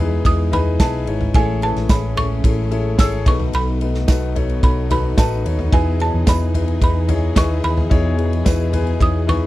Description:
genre	piano-driven pop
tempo	110 BPM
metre	4/4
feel	straight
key	E major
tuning	A4 = 443 Hz
part	buzzing marimba with hard mallets	melody	0.0-9.5 s	G#5 to E6	-24 LUFS	right 3 dB	none
part	warm concert grand piano	accompaniment	0.0-9.5 s	A2 to C#5	-22 LUFS	left 5 dB	none
part	dark studio string section	sustained chords	0.0-9.5 s	E3 to G#4	-30 LUFS	right 3 dB	none
part	hollow-body short-scale fingered electric bass	bass	0.0-9.5 s	G#1 to E2	-20 LUFS	equal	none
part	natural country drum kit	drums	0.2-9.4 s	kick drum, ride cymbal, snare drum, toms	-18 LUFS	equal	none
part	tambourine	percussion	0.8-8.6 s	none	-36 LUFS	right 16 dB	none
room	little or no reverb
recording	dry, close 1970s-style studio recording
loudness	-15 LUFS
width	side -16 dB against mid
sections	0.0-9.5 A section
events	none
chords	0.0 Emaj7; 1.3 Amaj7; 3.3 B7; 5.7 Emaj7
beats	0.25 0.80 | 1.34 1.89 2.44 2.99 | 3.53 4.08 4.63 5.17 | 5.72 6.27 6.82 7.36 | 7.91 8.46 9.01

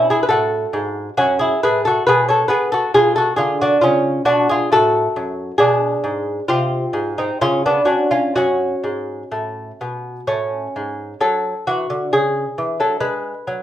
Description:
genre	classical, baroque-style dance for lute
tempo	60-69 BPM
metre	3/4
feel	rubato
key	F# minor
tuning	A4 = 438 Hz
part	lute	solo	0.0-13.6 s	F#2 to C#5	-16 LUFS	equal	none
room	moderate large studio reverb, RT60 0.7 s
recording	band playing live in one room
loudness	-16 LUFS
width	side -11 dB against mid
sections	0.0-11.2 A section; 11.2-13.6 B section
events	none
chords	0.3 F#m; 2.1 Amaj13/B; 2.9 C#7/B; 4.7 F#m/A; 5.6 G#dim/B; 6.5 G#/B#; 7.4 C#7b9; 8.3 F#m; 11.2 F#5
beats	| 0.29 1.17 2.05 | 2.94 3.82 4.70 | 5.58 6.47 7.38 | 8.35 9.32 10.29 | 11.23 12.12 13.02

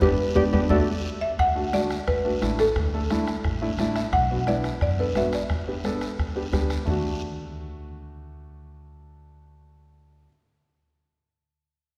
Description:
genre	latin, cumbia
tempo	175 BPM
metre	4/4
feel	straight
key	D major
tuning	A4 = 440 Hz
part	buzzing marimba with hard mallets	melody	0.0-6.5 s	A4 to F#5	-28 LUFS	equal	none
part	breathy clarinet	second line	0.0-0.8 s	G4 to A4	-31 LUFS	equal	none
part	warm upright piano	accompaniment	0.0-10.3 s	A3 to A4	-30 LUFS	equal	none
part	upright bass	bass	0.0-10.3 s	G1 to F#2	-34 LUFS	equal	none
part	bombo	percussion	0.0-6.9 s	none	-32 LUFS	equal	none
part	congas	percussion	0.0-6.9 s	none	-35 LUFS	equal	none
part	guiro	percussion	0.0-6.9 s	none	-44 LUFS	equal	none
room	wet concert hall reverb, RT60 2.4 s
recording	recorded in a church or concert hall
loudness	-25 LUFS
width	mono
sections	0.0-1.4 A section; 1.4-6.9 B section; 6.9-9.6 C section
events	band accent 0.0-1.4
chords	0.0 G; 0.7 D; 1.4 D5; 4.1 Bm; 5.5 G; 6.9 D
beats	| 0.02 0.36 0.70 1.04 | 1.39 1.73 2.07 2.41 | 2.76 3.10 3.44 3.78 | 4.13 4.47 4.81 5.15 | 5.50 5.84 6.18 6.52 | 6.87 7.21 7.55 7.89 | 8.24 8.58 8.93 9.27

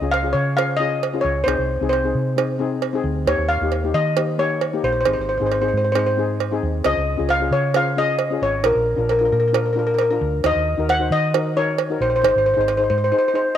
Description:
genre	calypso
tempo	134 BPM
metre	4/4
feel	straight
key	Db major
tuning	A4 = 440 Hz
part	steel pan	melody	0.0-13.6 s	Bb4 to Gb5	-20 LUFS	left 1 dB	cassette tape
part	steel pan	accompaniment	0.0-13.6 s	Bb3 to C5	-25 LUFS	left 6 dB	cassette tape
part	hollow-body short-scale fingered electric bass	bass	0.0-13.1 s	Ab1 to Eb3	-24 LUFS	right 1 dB	none
part	cowbell	percussion	0.1-12.8 s	none	-24 LUFS	right 10 dB	none
room	light reverb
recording	home recording on cassette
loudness	-17 LUFS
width	side -10 dB against mid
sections	0.0-13.6 A section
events	none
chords	0.0 Dbadd9; 1.5 Ab/C; 3.3 Eb7; 5.1 Ab; 6.9 Dbadd9; 8.6 Bb; 10.4 Ebm; 12.2 Ab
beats	0.13 0.57 1.02 | 1.47 1.92 2.37 2.82 | 3.27 3.71 4.16 4.61 | 5.06 5.51 5.96 6.41 | 6.85 7.30 7.75 8.20 | 8.65 9.10 9.54 9.99 | 10.44 10.89 11.34 11.78 | 12.23 12.68 13.12 13.57

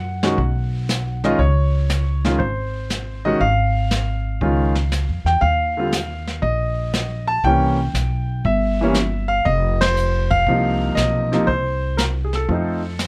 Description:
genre	jazz piano trio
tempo	119 BPM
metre	4/4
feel	swing 69% on 8ths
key	unclear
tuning	A4 = 440 Hz
part	clear concert grand piano	melody	0.0-13.0 s	C3 to A5	-23 LUFS	equal	none
part	upright bass	bass	0.0-13.1 s	F1 to Gb2	-23 LUFS	equal	none
part	vintage brush drum kit	drums	0.2-13.1 s	brushed snare drum, hi-hat, kick drum, ride cymbal, snare drum	-28 LUFS	equal	none
room	light reverb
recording	none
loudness	-20 LUFS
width	mono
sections	0.0-13.1 A section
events	band accent 9.7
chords	0.4 B; 1.4 Dbmaj7sus2; 3.4 Fm/Ab; 4.4 Dbadd9; 5.4 Ebsus2; 7.4 C7b9; 9.5 F5; 11.5 N.C.; 12.5 F7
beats	0.38 0.89 | 1.39 1.90 2.40 2.90 | 3.41 3.92 4.42 4.92 | 5.43 5.93 6.44 6.94 | 7.45 7.95 8.46 8.96 | 9.47 9.97 10.47 10.98 | 11.48 11.99 12.49 13.00

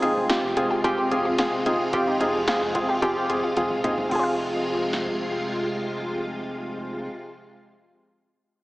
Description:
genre	synth-pop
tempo	110 BPM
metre	4/4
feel	straight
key	F minor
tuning	A4 = 441 Hz
part	warm analog keys	accompaniment	0.0-7.1 s	C4 to Ab4	-25 LUFS	equal	chorus
part	string machine, full ensemble	sustained chords	0.0-7.1 s	C3 to F4	-29 LUFS	equal	ensemble chorus
part	analog pluck	arpeggios	0.0-7.2 s	Eb4 to F5	-28 LUFS	equal	chorus, tape echo
part	rubbery square bass	bass	0.0-7.1 s	F1 to F2	-38 LUFS	equal	none
part	electro analog drum machine	drums	0.0-5.2 s	crash cymbal, hi-hat, kick drum, snare drum, toms	-31 LUFS	equal	none
room	wet lush hall reverb, RT60 1.9 s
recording	heavily compressed radio sound, small speaker sound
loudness	-22 LUFS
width	side -20 dB against mid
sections	0.0-4.1 A section; 4.1-8.5 B section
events	drum fill 3.6-4.1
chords	0.0 Fm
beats	0.29 0.84 1.39 | 1.93 2.48 3.02 3.57 | 4.11 4.66 5.20 5.75 | 6.29 6.84

